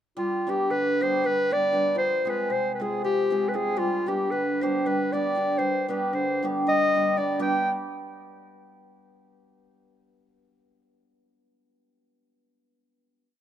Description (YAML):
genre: balkan folk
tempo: 232 BPM (eighths)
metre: 7/8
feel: straight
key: G phrygian dominant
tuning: A4 = 436 Hz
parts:
  - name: warm clarinet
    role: melody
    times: 0.2-7.7 s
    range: F4 to G5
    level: -24 LUFS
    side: equal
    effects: tape echo
  - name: hammered dulcimer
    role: accompaniment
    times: 0.2-7.7 s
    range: C3 to Ab4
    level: -27 LUFS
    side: right 1 dB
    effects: none
room: moderate small room reverb, RT60 0.5 s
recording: none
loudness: -22 LUFS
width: side -10 dB against mid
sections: 0.2-7.4 A section; 7.4-9.2 final chord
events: none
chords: 0.2 G; 2.0 Fm; 3.8 G